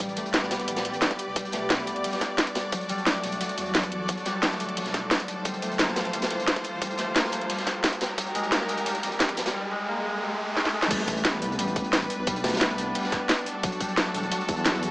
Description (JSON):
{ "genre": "liquid drum and bass", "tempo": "176 BPM", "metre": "4/4", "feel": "straight", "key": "A dorian", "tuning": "A4 = 439 Hz", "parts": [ { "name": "clear studio string section", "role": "sustained chords", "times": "0.0-14.9 s", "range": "D4 to D5", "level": "-32 LUFS", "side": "equal", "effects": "sidechain pumping" }, { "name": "concert harp", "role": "arpeggios", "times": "0.0-14.9 s", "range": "F#3 to B3", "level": "-32 LUFS", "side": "left 1 dB", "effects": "low-pass filter, tape echo" }, { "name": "dark detuned saw bass", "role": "bass", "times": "0.0-14.9 s", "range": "D1 to F2", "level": "-37 LUFS", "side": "equal", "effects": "none" }, { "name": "crunchy breakbeat drum kit", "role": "drums", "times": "0.0-14.9 s", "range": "hi-hat, snare drum", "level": "-32 LUFS", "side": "equal", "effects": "high-pass filter on hats, high-pass filter on snare, high-pass filter on room" }, { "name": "drum and bass drum kit", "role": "drums", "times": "0.0-14.9 s", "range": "crash cymbal, hi-hat, snare drum", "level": "-27 LUFS", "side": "equal", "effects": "none" }, { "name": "electronic kick drum", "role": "drums", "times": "0.0-14.6 s", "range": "none", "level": "-31 LUFS", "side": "equal", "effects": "high-pass filter on kick" }, { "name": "riser", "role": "sound effects", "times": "2.2-10.9 s", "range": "none", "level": "-36 LUFS", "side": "equal", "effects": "none" } ], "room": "moderate huge ambient reverb, RT60 7.4 s", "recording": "high-pass filter, small speaker sound", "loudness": "-24 LUFS", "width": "side -22 dB against mid", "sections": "0.0-10.9 A section; 10.9-14.9 B section", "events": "build-up 0.0-10.9; filter sweep on harp 0.0-10.9; riser 2.2-10.9; drum fill 10.6-10.9; drop 10.9-14.9", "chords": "0.0 Am11; 2.6 Em11; 5.5 Gm11; 8.0 Fm11; 10.9 Am11; 13.5 Em11", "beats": "| 0.00 0.34 0.68 1.02 | 1.36 1.70 2.04 2.38 | 2.73 3.07 3.41 3.75 | 4.09 4.43 4.77 5.11 | 5.45 5.79 6.13 6.47 | 6.82 7.16 7.50 7.84 | 8.18 8.52 8.86 9.20 | 9.54 9.88 10.22 10.57 | 10.91 11.25 11.59 11.93 | 12.27 12.61 12.95 13.29 | 13.63 13.97 14.32 14.66" }